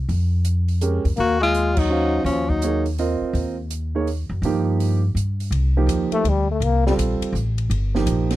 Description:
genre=modal jazz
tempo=165 BPM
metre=3/4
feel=swing 65% on 8ths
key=unclear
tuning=A4 = 439 Hz
part: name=upright bass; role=bass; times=0.0-8.4 s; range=G1 to G2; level=-21 LUFS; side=equal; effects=none
part: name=open jazz drum kit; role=drums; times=0.1-8.4 s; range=crash cymbal, hi-hat, kick drum, ride cymbal, snare drum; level=-30 LUFS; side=equal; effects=none
part: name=warm concert grand piano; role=accompaniment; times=0.8-8.4 s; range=F3 to F5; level=-23 LUFS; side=right 5 dB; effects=none
part: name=bright tenor saxophone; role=melody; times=1.2-2.9 s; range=Db4 to Gb4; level=-22 LUFS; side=equal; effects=none
part: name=clear trombone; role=second line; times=1.2-2.9, 6.1-6.9 s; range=F3 to Bb3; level=-22 LUFS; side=left 5 dB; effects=none
room=little or no reverb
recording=dry, close 1970s-style studio recording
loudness=-18 LUFS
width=side -15 dB against mid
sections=0.0-5.5 A section; 5.5-8.4 B section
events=band accent 1.7; trombone solo 5.5-8.4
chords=0.0 Fmadd9; 1.2 Ebm9; 4.4 Gm7; 5.5 Cm9

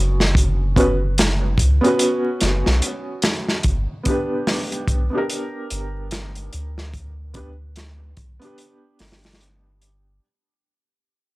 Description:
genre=trip hop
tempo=73 BPM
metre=4/4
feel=swing 60% on 16ths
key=unclear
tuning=A4 = 440 Hz
part: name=felt-muted upright piano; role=accompaniment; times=0.0-10.2 s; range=B3 to B4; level=-22 LUFS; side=equal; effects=tremolo, tape echo
part: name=soft dub sub bass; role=bass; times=0.0-10.2 s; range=F#1 to D2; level=-22 LUFS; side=equal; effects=none
part: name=crunchy breakbeat drum kit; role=drums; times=0.2-10.0 s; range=hi-hat, kick drum, snare drum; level=-21 LUFS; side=equal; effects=none
room=studio ambience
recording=dry, gritty hardware recording, transformer saturation, vinyl crackle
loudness=-18 LUFS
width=side -21 dB against mid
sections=0.0-10.2 A section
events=fade-out 0.0-10.2; filter sweep on sub bass 0.0-10.2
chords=0.0 Bsus2; 3.6 G

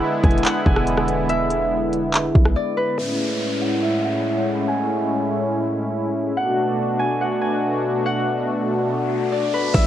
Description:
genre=hip hop, atmospheric cloud-rap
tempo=142 BPM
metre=4/4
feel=half-time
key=B dorian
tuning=A4 = 441 Hz
part: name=Celtic harp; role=melody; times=0.0-9.9 s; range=B4 to G#5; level=-25 LUFS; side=right 1 dB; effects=low-pass filter, tape echo
part: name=warm analog pad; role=sustained chords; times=0.0-9.9 s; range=A2 to F#4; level=-21 LUFS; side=left 1 dB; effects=chorus, tremolo, low-pass filter, cassette tape
part: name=warm 808-style bass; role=bass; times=0.2-2.6, 9.7-9.9 s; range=E1 to B1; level=-22 LUFS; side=equal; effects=none
part: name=trap drum kit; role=drums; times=0.2-2.6, 9.7-9.8 s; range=crash cymbal, handclaps, hi-hat, kick drum, rim click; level=-18 LUFS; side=equal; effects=vintage 12-bit sampler grit, cassette tape
part: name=downlifter and riser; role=sound effects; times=3.0-9.9 s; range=none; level=-32 LUFS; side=equal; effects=none
room=light reverb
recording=home recording on cassette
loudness=-18 LUFS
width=side -11 dB against mid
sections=0.0-3.0 A section; 3.0-9.7 B section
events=break 2.6-3.0; filter sweep 3.0-9.7; riser 8.5-9.7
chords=0.0 E7; 3.0 Amaj7; 6.4 Bm7

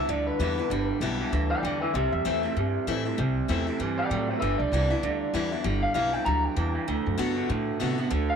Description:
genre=rock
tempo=194 BPM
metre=4/4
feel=swing 59% on 8ths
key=G major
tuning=A4 = 440 Hz
part: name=electric guitar through a small old amp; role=melody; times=0.0-8.4 s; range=B4 to Bb5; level=-29 LUFS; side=left 1 dB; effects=spring reverb, tape echo
part: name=picked steel-string acoustic guitar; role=accompaniment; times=0.0-8.4 s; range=G2 to F#4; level=-31 LUFS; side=left 11 dB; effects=none
part: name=electric guitar through a small old amp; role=riff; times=0.0-8.4 s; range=G2 to B3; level=-30 LUFS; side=right 10 dB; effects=none
part: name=upright bass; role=bass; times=0.1-8.3 s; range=G1 to C3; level=-30 LUFS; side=equal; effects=none
room=light reverb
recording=1960s-style stereo with parts hard left and right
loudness=-24 LUFS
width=side -7 dB against mid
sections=0.0-8.4 A section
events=none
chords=0.0 G6; 1.9 C6; 4.4 G6; 6.9 D6

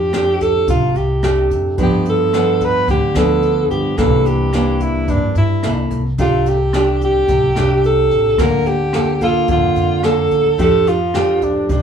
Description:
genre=bossa nova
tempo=109 BPM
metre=4/4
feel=straight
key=F major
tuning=A4 = 440 Hz
part: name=clear alto saxophone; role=melody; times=0.0-11.8 s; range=D4 to B4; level=-17 LUFS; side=equal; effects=none
part: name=nylon-string guitar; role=accompaniment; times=0.0-11.8 s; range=G2 to A4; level=-18 LUFS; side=right 1 dB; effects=none
part: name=upright bass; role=bass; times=0.0-11.8 s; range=A1 to G2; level=-20 LUFS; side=equal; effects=none
part: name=jazz brush drum kit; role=drums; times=0.1-11.8 s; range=hi-hat, kick drum, rim click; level=-24 LUFS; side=equal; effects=none
room=moderate studio reverb, RT60 0.5 s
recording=band playing live in one room, studio ambience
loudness=-13 LUFS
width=side -7 dB against mid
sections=0.0-11.8 A section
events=none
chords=0.0 F69; 1.8 G7; 4.0 C9; 5.6 C6; 6.2 F69 (rootless); 8.4 Bbmaj7/D; 10.6 F69

